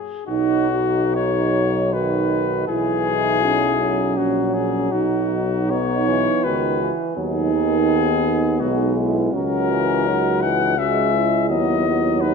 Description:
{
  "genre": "classical, hymn-like piece for brass band",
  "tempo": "66-85 BPM",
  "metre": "3/4",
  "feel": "rubato",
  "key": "B major",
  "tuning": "A4 = 444 Hz",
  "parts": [
    { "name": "dark cornet", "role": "melody", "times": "0.0-12.3 s", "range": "F#4 to F#5", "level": "-22 LUFS", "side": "left 9 dB", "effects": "none" },
    { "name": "dark French horn section", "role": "second line", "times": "0.3-12.3 s", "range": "C#4 to F#4", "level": "-23 LUFS", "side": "right 9 dB", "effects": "none" },
    { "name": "clear euphonium", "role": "accompaniment", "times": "0.3-12.3 s", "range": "D#3 to G#3", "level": "-26 LUFS", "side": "right 2 dB", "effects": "none" },
    { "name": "warm euphonium", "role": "accompaniment", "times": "0.3-12.3 s", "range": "B3 to E4", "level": "-26 LUFS", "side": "left 3 dB", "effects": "none" },
    { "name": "warm tuba", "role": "bass", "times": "0.3-12.3 s", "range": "A#1 to D#2", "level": "-24 LUFS", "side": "equal", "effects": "none" }
  ],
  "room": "moderate scoring stage reverb, RT60 1.7 s",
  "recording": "none",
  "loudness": "-17 LUFS",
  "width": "side -5 dB against mid",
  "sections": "0.3-12.3 A section",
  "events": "none",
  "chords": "0.3 B; 2.7 F#7/B; 4.9 B; 7.2 B/D#; 9.3 F#7/C#; 11.5 B/D#",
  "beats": "| 0.28 1.14 1.93 | 2.69 3.43 4.18 | 4.92 5.71 6.44 | 7.16 7.88 8.60 | 9.32 10.05 10.78 | 11.50 12.23"
}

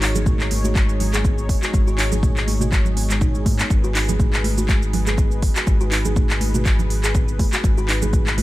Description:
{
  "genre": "afro house",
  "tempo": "122 BPM",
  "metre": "4/4",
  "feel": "swing 55% on 16ths",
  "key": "G# minor",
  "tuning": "A4 = 440 Hz",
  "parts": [
    { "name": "warm analog pad", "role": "sustained chords", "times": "0.0-8.4 s", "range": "G#3 to C#5", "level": "-31 LUFS", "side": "left 1 dB", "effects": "chorus, sidechain pumping" },
    { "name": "buzzing kalimba", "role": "arpeggios", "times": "0.0-8.4 s", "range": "G#3 to G#4", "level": "-28 LUFS", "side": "equal", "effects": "vintage 12-bit sampler grit, sidechain pumping, digital delay" },
    { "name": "round analog bass", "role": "bass", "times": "0.0-8.4 s", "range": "G#1 to G#2", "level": "-22 LUFS", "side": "equal", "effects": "sidechain pumping" },
    { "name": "afro-pop drum kit", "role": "drums", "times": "0.0-8.4 s", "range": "handclaps, hi-hat, shaker, toms", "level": "-24 LUFS", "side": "equal", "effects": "none" },
    { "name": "congas", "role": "percussion", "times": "0.2-8.4 s", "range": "none", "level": "-28 LUFS", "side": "right 4 dB", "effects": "none" },
    { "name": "electronic kick drum", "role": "drums", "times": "0.3-8.2 s", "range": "none", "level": "-19 LUFS", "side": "equal", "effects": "overdrive" }
  ],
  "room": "digital ambience",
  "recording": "none",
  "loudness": "-17 LUFS",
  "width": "side -17 dB against mid",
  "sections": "0.0-8.4 A section",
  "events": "none",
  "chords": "0.0 G#m7",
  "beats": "0.26 0.75 1.25 | 1.74 2.23 2.72 3.21 | 3.71 4.20 4.69 5.18 | 5.67 6.16 6.66 7.15 | 7.64 8.13"
}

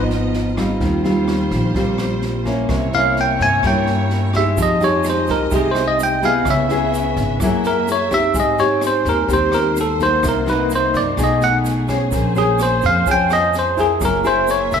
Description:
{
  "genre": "bossa nova",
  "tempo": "127 BPM",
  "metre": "4/4",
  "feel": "straight",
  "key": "F minor",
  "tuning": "A4 = 440 Hz",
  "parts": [
    { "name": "bell-like tine electric piano", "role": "melody", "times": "0.0, 2.9-14.8 s", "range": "Ab4 to Ab5", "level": "-17 LUFS", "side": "right 1 dB", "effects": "medium stereo tremolo" },
    { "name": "nylon-string guitar", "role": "accompaniment", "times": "0.0-14.8 s", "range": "Ab2 to C5", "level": "-20 LUFS", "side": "left 2 dB", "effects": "none" },
    { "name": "warm symphonic string section", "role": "sustained chords", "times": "0.0-14.8 s", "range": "G3 to Fb5", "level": "-27 LUFS", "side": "right 1 dB", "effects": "none" },
    { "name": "upright bass", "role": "bass", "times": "0.0-14.8 s", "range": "Gb1 to Ab2", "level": "-24 LUFS", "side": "equal", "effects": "none" },
    { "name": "open jazz drum kit", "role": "drums", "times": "0.1-14.8 s", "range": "kick drum, rim click, snare drum", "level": "-27 LUFS", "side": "right 1 dB", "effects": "none" },
    { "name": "egg shaker", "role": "percussion", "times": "4.6-14.8 s", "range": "none", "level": "-35 LUFS", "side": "right 7 dB", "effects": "none" }
  ],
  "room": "moderate large studio reverb, RT60 1.4 s",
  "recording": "band playing live in one room",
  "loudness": "-15 LUFS",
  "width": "side -7 dB against mid",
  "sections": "0.0-14.8 A section",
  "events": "tine electric piano solo 0.0-14.8",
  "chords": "0.0 Db9 (rootless); 0.8 Eb69; 2.7 C7b9; 4.6 Fm9; 6.5 Dbm7; 7.4 Gb9; 8.3 Abmaj7; 10.2 Cm7b5; 11.2 B13; 12.1 Bbm9; 14.0 Gb9",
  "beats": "0.34 | 0.81 1.28 1.75 2.22 | 2.69 3.16 3.63 4.11 | 4.58 5.05 5.52 5.99 | 6.46 6.93 7.41 7.88 | 8.35 8.82 9.29 9.77 | 10.24 10.71 11.18 11.65 | 12.12 12.60 13.07 13.54 | 14.01 14.48"
}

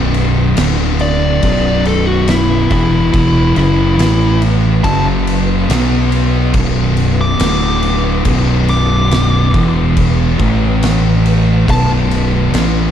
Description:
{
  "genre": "stoner and doom metal",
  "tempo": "70 BPM",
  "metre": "4/4",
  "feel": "straight",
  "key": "B minor",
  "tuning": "A4 = 440 Hz",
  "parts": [
    { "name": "thick fuzz guitar", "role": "riff", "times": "0.0-12.9 s", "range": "B1 to B3", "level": "-16 LUFS", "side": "left 7 dB", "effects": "distortion" },
    { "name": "thick fuzz guitar", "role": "riff", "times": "0.0-12.9 s", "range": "B1 to B3", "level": "-16 LUFS", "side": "right 7 dB", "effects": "distortion" },
    { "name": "growling fingered electric bass", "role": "bass", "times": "0.0-12.9 s", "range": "B0 to B1", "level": "-17 LUFS", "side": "equal", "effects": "overdrive" },
    { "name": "oversized low-tuned drum kit", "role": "drums", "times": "0.1-12.7 s", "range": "crash cymbal, kick drum, snare drum", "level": "-19 LUFS", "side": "equal", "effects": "none" },
    { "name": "fuzz lead guitar", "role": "melody", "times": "1.0-11.9 s", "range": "E4 to D6", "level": "-18 LUFS", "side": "left 1 dB", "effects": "distortion, ping-pong delay" }
  ],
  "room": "small room ambience",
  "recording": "dark, warm production",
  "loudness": "-10 LUFS",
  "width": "side -9 dB against mid",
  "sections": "0.0-12.9 A section",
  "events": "lead electric guitar solo 0.0-12.9",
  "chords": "0.0 B5; 0.6 D5; 1.4 B5; 4.0 A5; 4.8 F#5; 5.7 B5; 7.4 D5; 8.3 Bm; 9.5 E5; 10.4 A5; 11.7 B5",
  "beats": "0.58 1.43 2.28 | 3.13 3.99 4.84 5.69 | 6.55 7.40 8.26 9.11 | 9.96 10.82 11.67 12.53"
}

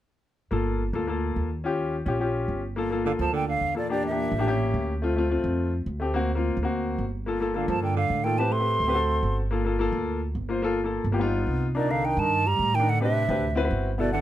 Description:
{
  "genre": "jazz",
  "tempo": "214 BPM",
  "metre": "4/4",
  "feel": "straight",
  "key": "G minor",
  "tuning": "A4 = 440 Hz",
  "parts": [
    { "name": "clear grand piano", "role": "accompaniment", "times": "0.5-14.2 s", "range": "A3 to C5", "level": "-27 LUFS", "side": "left 3 dB", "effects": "none" },
    { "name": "upright bass", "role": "bass", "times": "0.5-14.2 s", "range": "G1 to A2", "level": "-28 LUFS", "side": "right 1 dB", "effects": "none" },
    { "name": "hollow concert flute", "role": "melody", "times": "3.1-4.9, 7.6-9.4, 11.8-14.2 s", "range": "D5 to C6", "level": "-26 LUFS", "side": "right 1 dB", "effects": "none" },
    { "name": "mellow tenor saxophone", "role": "second line", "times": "3.1-4.8, 7.6-9.4, 11.8-14.2 s", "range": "Bb2 to A3", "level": "-31 LUFS", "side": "right 8 dB", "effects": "none" }
  ],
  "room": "light reverb",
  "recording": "none",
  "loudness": "-23 LUFS",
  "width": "side -12 dB against mid",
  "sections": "0.5-2.8 A section; 2.8-11.8 B section; 11.8-14.2 C section",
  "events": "none",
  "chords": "0.5 Gm7; 1.6 Eb7; 2.8 Gm7; 3.9 Em7b5; 4.5 A7b9; 5.0 Dm7; 6.1 D7alt; 7.3 Gm9; 8.4 Am7; 9.0 D7; 9.5 Gm7; 11.2 Gaug7; 11.8 Cm9; 12.9 Am11; 13.4 D13",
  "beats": "| 0.52 0.80 1.08 1.36 | 1.65 1.93 2.21 2.49 | 2.77 3.05 3.33 3.62 | 3.90 4.18 4.46 4.74 | 5.02 5.30 5.58 5.87 | 6.15 6.43 6.71 6.99 | 7.27 7.55 7.83 8.11 | 8.39 8.67 8.95 9.23 | 9.51 9.79 10.07 10.36 | 10.64 10.92 11.20 11.48 | 11.76 12.04 12.32 12.60 | 12.88 13.16 13.44 13.72 | 14.00"
}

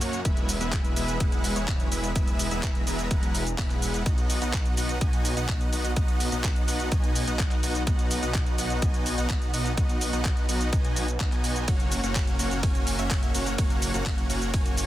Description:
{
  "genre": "EDM, festival progressive house",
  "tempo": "126 BPM",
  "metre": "4/4",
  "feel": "straight",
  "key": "B major",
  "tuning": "A4 = 435 Hz",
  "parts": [
    { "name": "lush unison pad", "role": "sustained chords", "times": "0.0-14.9 s", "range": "E3 to A#5", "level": "-36 LUFS", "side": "equal", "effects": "chorus, phaser, sidechain pumping" },
    { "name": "dense compressed supersaw", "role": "riff", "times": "0.0-14.9 s", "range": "G#3 to G#5", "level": "-30 LUFS", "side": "equal", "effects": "sidechain pumping, tape echo" },
    { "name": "wide detuned saw bass", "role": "bass", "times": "0.0-14.9 s", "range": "E1 to F#2", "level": "-31 LUFS", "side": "equal", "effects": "chorus, sidechain pumping" },
    { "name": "pop drum kit", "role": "drums", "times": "0.0-14.9 s", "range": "cabasa, handclaps, hi-hat, ride cymbal", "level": "-32 LUFS", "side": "equal", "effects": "none" },
    { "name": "electronic kick drum", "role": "drums", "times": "0.3-14.6 s", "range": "none", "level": "-26 LUFS", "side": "equal", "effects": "none" }
  ],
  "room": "little or no reverb",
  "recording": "dense, heavily limited modern master",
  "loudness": "-23 LUFS",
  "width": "side -14 dB against mid",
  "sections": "0.0-14.9 A section",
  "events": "none",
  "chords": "0.3 E; 4.1 B; 11.7 F#",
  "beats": "| 0.25 0.73 1.20 1.68 | 2.16 2.63 3.11 3.58 | 4.06 4.54 5.01 5.49 | 5.96 6.44 6.92 7.39 | 7.87 8.35 8.82 9.30 | 9.78 10.25 10.73 11.20 | 11.68 12.16 12.63 13.11 | 13.58 14.06 14.54"
}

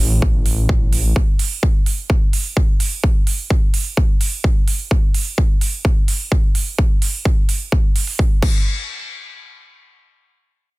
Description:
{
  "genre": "EDM, festival progressive house",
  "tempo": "128 BPM",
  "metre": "4/4",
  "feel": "straight",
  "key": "unclear",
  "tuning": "A4 = 445 Hz",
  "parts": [
    { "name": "detuned saw bass", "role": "bass", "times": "0.0-1.1 s", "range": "A1", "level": "-17 LUFS", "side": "equal", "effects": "sidechain pumping" },
    { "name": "electronic kick drum", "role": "drums", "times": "0.2-8.5 s", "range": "none", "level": "-16 LUFS", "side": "equal", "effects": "none" },
    { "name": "big-room dance drum kit", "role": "drums", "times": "0.5-8.5 s", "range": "crash cymbal, hi-hat", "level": "-24 LUFS", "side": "right 5 dB", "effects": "none" }
  ],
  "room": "little or no reverb",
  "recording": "dense, heavily limited modern master",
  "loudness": "-15 LUFS",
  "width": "side -22 dB against mid",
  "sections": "0.0-8.7 A section; 8.7-10.8 B section",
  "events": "none",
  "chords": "none",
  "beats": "0.22 0.69 | 1.16 1.63 2.10 2.57 | 3.04 3.50 3.97 4.44 | 4.91 5.38 5.85 6.32 | 6.79 7.25 7.72 8.19"
}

